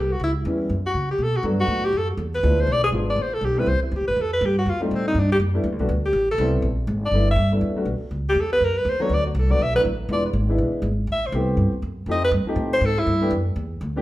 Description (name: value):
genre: jazz, small-group swing and bop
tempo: 242 BPM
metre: 4/4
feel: swing 58% on 8ths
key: G major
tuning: A4 = 441 Hz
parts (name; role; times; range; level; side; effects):
- clear alto saxophone; melody; 0.0-13.3 s; A3 to E5; -22 LUFS; equal; none
- upright bass; bass; 0.0-14.0 s; E1 to C#3; -23 LUFS; equal; none
- warm baby grand piano; accompaniment; 0.5-14.0 s; E3 to G4; -26 LUFS; left 1 dB; none
room: wet large studio reverb, RT60 1.0 s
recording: band playing live in one room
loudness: -19 LUFS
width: side -16 dB against mid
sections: 0.0-7.1 A section; 7.1-14.0 A section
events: alto saxophone solo 0.0-14.0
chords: 0.2 C#m7b5; 0.7 F#5; 1.2 Bm7; 2.2 E7b9; 3.2 Am9; 4.2 F9; 5.2 G69; 6.1 Am7; 6.6 Bb7(no3); 7.1 G69; 8.1 C#dim; 8.6 E9sus4; 9.1 Bm7; 10.1 E7b9; 11.1 Am9; 12.1 F9; 13.1 G69